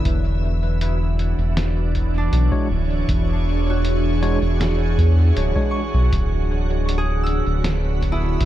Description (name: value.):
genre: ambient dub.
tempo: 79 BPM.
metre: 4/4.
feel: straight.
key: E mixolydian.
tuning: A4 = 440 Hz.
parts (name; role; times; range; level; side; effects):
soft additive organ-like pad; sustained chords; 0.0-8.5 s; D3 to E5; -25 LUFS; right 2 dB; ensemble chorus, built-in reverb.
concert harp; arpeggios; 0.0-8.5 s; D4 to E6; -32 LUFS; right 2 dB; dub echo.
round analog bass; bass; 0.0-8.5 s; D1 to E2; -19 LUFS; equal; none.
electronic kick drum; drums; 0.0-8.2 s; none; -25 LUFS; equal; none.
lo-fi sampler-style drum kit; drums; 0.1-8.5 s; hi-hat, snare drum; -28 LUFS; equal; dub echo.
tine electric piano; stabs; 2.5-5.8 s; G#3 to C#5; -31 LUFS; left 2 dB; medium tremolo, dub echo.
room: little or no reverb.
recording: echo-heavy mix.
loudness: -17 LUFS.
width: side -13 dB against mid.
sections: 0.0-8.5 A section.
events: none.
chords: 0.1 E13.